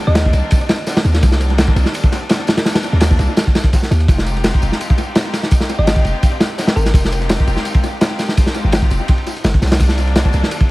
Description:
drum and bass, jungle; 168 BPM; 4/4; swing 53% on 16ths; F dorian; A4 = 440 Hz
rich symphonic string section; sustained chords; 0.0-10.7 s; Eb3 to G4; -25 LUFS; left 1 dB; vintage 12-bit sampler grit
thumb-piano-like synth pluck; melody; 0.1-0.3, 5.8-7.1 s; Bb4 to Eb5; -26 LUFS; left 1 dB; chorus, analog delay
long sustained 808-style bass; bass; 0.1-10.4 s; F1 to Eb2; -15 LUFS; equal
crunchy breakbeat drum kit; drums; 0.1-10.6 s; hi-hat, snare drum, tambourine; -30 LUFS; left 1 dB; high-pass filter on hats, high-pass filter on snare, high-pass filter on perc, high-pass filter on room, analog delay
crunchy breakbeat drum kit; drums; 0.2-10.7 s; kick drum, ride cymbal, snare drum; -14 LUFS; equal; analog delay
little or no reverb; echo-heavy mix, vinyl crackle; -13 LUFS; side -20 dB against mid
0.0-10.7 A section
0.0 Cm9; 4.1 Fm9; 9.8 Cm9

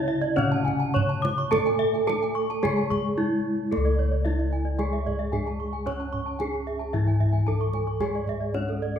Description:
Balinese gamelan; 111 BPM; 4/4; uneven beats; C# pelog; A4 = 440 Hz
gamelan-type bronze metallophone; melody; 0.0-9.0 s; A3 to C#5; -28 LUFS; right 2 dB
gamelan-type bronze metallophone; accompaniment; 0.0-9.0 s; C#3 to C#4; -31 LUFS; left 2 dB
gamelan-type bronze metallophone; arpeggios; 0.0-9.0 s; A4 to C#6; -34 LUFS; right 6 dB
gamelan-type bossed gongs; bass; 0.0-9.0 s; C#2 to C#5; -28 LUFS; left 1 dB
gamelan-type bronze metallophone; arpeggios; 0.1-9.0 s; A4 to D6+35c; -34 LUFS; left 5 dB
kendang; percussion; 0.2-9.0 s; -35 LUFS; right 3 dB
wet recital hall reverb, RT60 1.8 s; minimal, uncompressed stereo recording; -23 LUFS; side -8 dB against mid
0.0-3.7 A section; 3.7-9.0 B section
drum fill 3.2-3.7

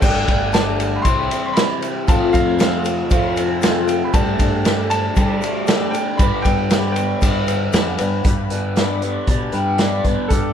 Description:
folk rock and heartland rock; 117 BPM; 4/4; straight; G mixolydian; A4 = 441 Hz
clear baby grand piano; melody; 0.0-10.5 s; A4 to C6; -25 LUFS; right 1 dB
picked twelve-string acoustic guitar; accompaniment; 0.0-10.5 s; G2 to B4; -25 LUFS; left 5 dB
reed electric piano; accompaniment; 0.0-8.1 s; E4 to G5; -29 LUFS; right 6 dB; fast tremolo
crunchy overdriven guitar; riff; 0.0-10.5 s; F2 to G4; -23 LUFS; equal; phaser
fingered electric bass; bass; 0.0-10.5 s; G1 to G3; -24 LUFS; equal
vintage drum kit; drums; 0.0-10.4 s; crash cymbal, hi-hat, kick drum, ride cymbal, snare drum; -19 LUFS; equal
egg shaker; percussion; 0.0-10.4 s; -41 LUFS; left 9 dB
moderate large studio reverb, RT60 1.2 s; band playing live in one room; -16 LUFS; side -8 dB against mid
0.0-8.2 A section; 8.2-10.3 B section
0.0 Gsus2; 1.1 C; 2.1 F; 4.1 Gsus2; 6.2 G

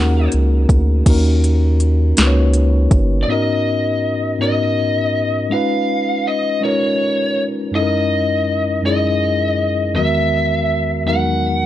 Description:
slow six-eight R&B; 54 BPM (dotted quarters); 6/8; straight; G# minor; A4 = 442 Hz
lead guitar through a small cranked amp; melody; 0.0-11.7 s; C#5 to F#5; -19 LUFS; left 1 dB; overdrive
mellow tine electric piano; accompaniment; 0.0-11.7 s; E2 to C#5; -18 LUFS; left 1 dB; medium stereo tremolo
round analog bass; bass; 0.0-3.2 s; G1 to D#2; -14 LUFS; equal; tube saturation
smooth R&B drum kit; drums; 0.3-3.1 s; crash cymbal, hi-hat, kick drum, snare drum; -16 LUFS; equal; overdrive
little or no reverb; dry, gritty hardware recording, transformer saturation, nothing above 10.5 kHz; -14 LUFS; side -12 dB against mid
0.0-1.1 A section; 1.1-3.3 B section; 3.3-11.7 C section
0.0 D#m7; 3.3 G#m11; 5.5 C#7; 7.7 F#13; 9.9 Emaj9#11

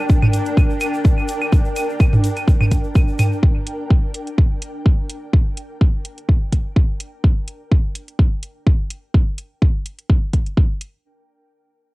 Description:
minimal techno; 126 BPM; 4/4; swing 54% on 16ths; G minor; A4 = 439 Hz
ethereal airy pad; texture; 0.0-7.2 s; D4 to G5; -28 LUFS; equal; ensemble chorus, built-in reverb, sidechain pumping, cassette tape
swarming drone; texture; 0.0-3.4 s; D4; -29 LUFS; equal; built-in reverb, sidechain pumping, cassette tape
electronic kick drum; drums; 0.1-10.7 s; -15 LUFS; equal; cassette tape
egg shaker; percussion; 0.1-3.4 s; -41 LUFS; left 3 dB
electronic toms and claves; percussion; 0.2-3.3 s; -19 LUFS; equal; overdrive, cassette tape
electronic hi-hat; drums; 0.3-10.9 s; -32 LUFS; right 1 dB; cassette tape
little or no reverb; home recording on cassette; -16 LUFS; side -21 dB against mid
0.0-11.0 A section
fade-out on ambient pad 0.0-7.2
0.0 Gm

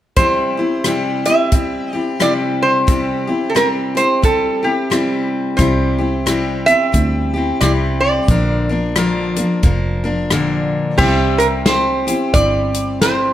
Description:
honky-tonk and classic country; 89 BPM; 4/4; swing 60% on 8ths; C mixolydian; A4 = 445 Hz
lap resonator guitar; melody; 0.2-13.3 s; G4 to E5; -17 LUFS; right 2 dB
picked steel-string acoustic guitar; accompaniment; 0.2-13.3 s; Bb2 to Bb4; -18 LUFS; left 2 dB
natural country drum kit; drums; 0.2-13.2 s; crash cymbal, hi-hat, kick drum, rim click, snare drum; -18 LUFS; equal
fingered electric bass; bass; 5.6-13.3 s; F1 to D2; -20 LUFS; equal
pedal steel guitar; sustained chords; 11.0-13.3 s; C5 to E5; -26 LUFS; right 1 dB
moderate recital hall reverb, RT60 1.4 s; -14 LUFS; side -12 dB against mid
0.2-11.0 A section; 11.0-13.3 B section
0.2 C; 8.3 Bb; 11.0 C

